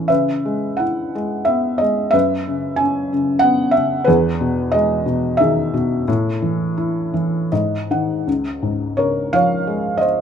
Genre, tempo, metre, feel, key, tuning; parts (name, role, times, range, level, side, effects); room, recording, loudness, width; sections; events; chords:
classical, lyrical solo piano; 76-97 BPM; 3/4; rubato; C# minor; A4 = 443 Hz
felt-muted upright piano; solo; 0.0-10.2 s; Db2 to G#5; -16 LUFS; equal
light reverb; close, detailed microphones; -16 LUFS; side -8 dB against mid
0.0-8.3 A section; 8.3-10.2 B section
felt piano fill 7.1-8.3
0.1 C#m7; 2.1 F#7sus4; 4.1 Emaj7; 6.1 A5; 7.5 G#5; 8.3 Db6